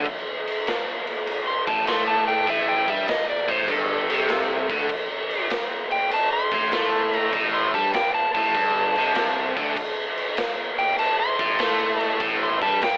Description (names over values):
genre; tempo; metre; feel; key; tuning
blues rock power trio and southern rock; 99 BPM; 4/4; swing 68% on 8ths; A minor; A4 = 441 Hz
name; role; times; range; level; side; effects
biting overdriven guitar; riff; 0.0-12.9 s; G2 to A3; -27 LUFS; equal; none
fuzz fingered electric bass; bass; 0.0-12.9 s; G1 to A2; -33 LUFS; equal; overdrive
raw garage drum kit; drums; 0.1-13.0 s; crash cymbal, kick drum, snare drum; -28 LUFS; equal; none
overdriven slide guitar; melody; 1.5-13.0 s; A4 to C6; -26 LUFS; equal; none
room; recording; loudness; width
light reverb; telephone sound; -23 LUFS; mono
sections
0.0-13.0 A section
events
electric slide guitar solo 0.0-13.0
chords
0.0 Am